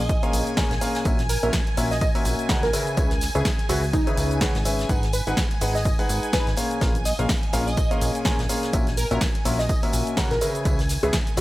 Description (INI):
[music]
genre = piano house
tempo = 125 BPM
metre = 4/4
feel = swing 57% on 16ths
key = unclear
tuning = A4 = 442 Hz
[part]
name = plucky unison lead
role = melody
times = 0.0-11.4 s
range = D#4 to D#5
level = -30 LUFS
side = right 1 dB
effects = lush chorus, analog delay
[part]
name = string machine, violins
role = sustained chords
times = 0.0-11.4 s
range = G#5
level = -34 LUFS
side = equal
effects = ensemble chorus, sidechain pumping
[part]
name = plucky analog bass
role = bass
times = 0.0-11.4 s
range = G#1 to C#2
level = -26 LUFS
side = equal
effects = sidechain pumping
[part]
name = downlifter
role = sound effects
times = 0.0-1.1 s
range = none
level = barely audible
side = none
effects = none
[part]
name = electronic kick drum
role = drums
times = 0.1-11.2 s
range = none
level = -24 LUFS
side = equal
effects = none
[part]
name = punchy analog drum machine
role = drums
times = 0.1-11.4 s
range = cabasa, hi-hat, snare drum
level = -29 LUFS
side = equal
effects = none
[part]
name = swinging big-band drum kit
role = drums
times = 0.1-11.4 s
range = hi-hat, snare drum, tambourine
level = -37 LUFS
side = left 1 dB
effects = sidechain pumping on hats, high-pass filter on hats, high-pass filter on snare, sidechain pumping on perc, high-pass filter on perc, high-pass filter on room
[part]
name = tambourine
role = percussion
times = 0.1-11.4 s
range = none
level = -41 LUFS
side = right 5 dB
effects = none
[part]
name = clear grand piano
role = riff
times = 0.2-11.4 s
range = A#2 to G#5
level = -27 LUFS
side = left 1 dB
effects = sidechain pumping
[sound]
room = small room ambience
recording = dry, gritty hardware recording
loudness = -20 LUFS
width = side -17 dB against mid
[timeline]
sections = 0.0-11.4 A section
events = none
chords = 0.0 A#m7; 1.1 F#7/A#; 2.7 C#m7; 4.9 G#m7; 6.6 A#m7; 8.7 F#7/A#; 10.4 C#m7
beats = 0.09 0.57 | 1.05 1.53 2.01 2.49 | 2.97 3.45 3.93 4.41 | 4.89 5.37 5.85 6.33 | 6.81 7.29 7.77 8.25 | 8.73 9.21 9.69 10.17 | 10.65 11.13